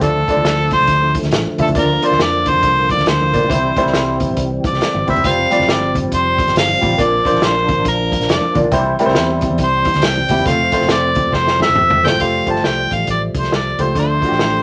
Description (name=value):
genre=uptempo 1960s-style soul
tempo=138 BPM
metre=4/4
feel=swing 62% on 8ths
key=F major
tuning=A4 = 440 Hz
part: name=mellow harmonica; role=melody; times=0.0-14.6 s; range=A4 to A5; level=-19 LUFS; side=equal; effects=none
part: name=warm baby grand piano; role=accompaniment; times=0.0-14.6 s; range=G3 to E5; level=-21 LUFS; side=equal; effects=none
part: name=percussive tonewheel organ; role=sustained chords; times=0.0-14.6 s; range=D3 to D4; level=-25 LUFS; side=equal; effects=slow rotary speaker, chorus vibrato
part: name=vintage muted fingered electric bass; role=bass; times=0.0-14.6 s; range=Eb1 to F2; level=-25 LUFS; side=equal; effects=none
part: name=vintage drum kit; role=drums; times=0.0-14.5 s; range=hi-hat, kick drum, snare drum, toms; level=-23 LUFS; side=equal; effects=none
part: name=congas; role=percussion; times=0.0-12.2 s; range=none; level=-28 LUFS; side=equal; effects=none
room=light reverb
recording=none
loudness=-15 LUFS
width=mono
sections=0.0-12.2 A section; 12.2-14.6 B section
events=harmonica solo 0.0-12.2; drum fill 11.3-12.2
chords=0.0 Dm; 1.8 Bb/D; 3.5 C; 5.2 Fsus2; 7.0 Bb; 8.7 C; 10.5 F; 12.2 Fadd9; 14.0 Dm